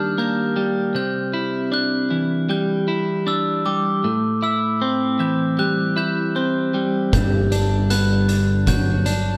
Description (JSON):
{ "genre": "post-rock", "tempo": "78 BPM", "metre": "4/4", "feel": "straight", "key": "unclear", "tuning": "A4 = 440 Hz", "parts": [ { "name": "glockenspiel with hard plastic mallets", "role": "arpeggios", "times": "0.0-9.4 s", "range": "D6 to G6", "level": "-28 LUFS", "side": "equal", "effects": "none" }, { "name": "twelve-string electric guitar", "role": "arpeggios", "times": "0.0-9.4 s", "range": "G2 to E4", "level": "-22 LUFS", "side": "equal", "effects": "none" }, { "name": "growling fingered electric bass", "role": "bass", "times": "7.1-9.4 s", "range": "G1", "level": "-22 LUFS", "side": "equal", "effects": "overdrive" }, { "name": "oversized low-tuned drum kit", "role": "drums", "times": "7.1-9.2 s", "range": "hi-hat, kick drum", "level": "-26 LUFS", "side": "equal", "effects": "none" } ], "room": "wet stone room reverb, RT60 1.0 s", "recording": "band playing live in one room", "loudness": "-20 LUFS", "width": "mono", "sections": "0.0-9.4 A section", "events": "none", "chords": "0.0 Ebmaj7; 1.0 Cadd9; 4.0 Am7; 7.1 Gmaj7" }